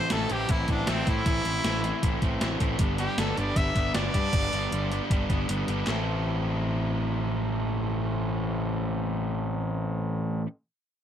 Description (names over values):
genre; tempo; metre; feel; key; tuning
indie rock; 156 BPM; 4/4; straight; A minor; A4 = 440 Hz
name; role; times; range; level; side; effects
brilliant trumpet; melody; 0.0-5.1 s; C4 to E5; -30 LUFS; equal; analog delay
overdriven electric guitar; riff; 0.0-10.5 s; G2 to A4; -29 LUFS; equal; none
fuzz picked electric bass; bass; 0.1-10.4 s; G1 to A2; -30 LUFS; equal; overdrive
gated 80s digital drum machine; drums; 0.1-6.0 s; handclaps, hi-hat, kick drum, snare drum; -28 LUFS; equal; gated reverb, gated reverb snare
room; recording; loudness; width
little or no reverb; none; -25 LUFS; side -9 dB against mid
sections
0.0-5.9 A section; 5.9-9.0 B section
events
trumpet solo 0.0-5.9; break 5.5-5.9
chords
0.0 Am; 2.8 G; 5.9 Am